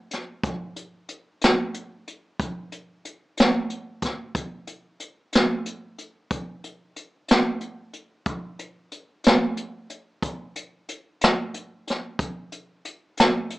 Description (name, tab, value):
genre	blues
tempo	61 BPM (dotted quarters)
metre	12/8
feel	straight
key	none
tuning	none
part	jazz brush drum kit	drums	0.1-13.6 s	hi-hat, kick drum, snare drum	-21 LUFS	equal	none
room	moderate club reverb, RT60 0.7 s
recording	small speaker sound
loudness	-22 LUFS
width	side -18 dB against mid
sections	0.0-13.6 A section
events	none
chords	none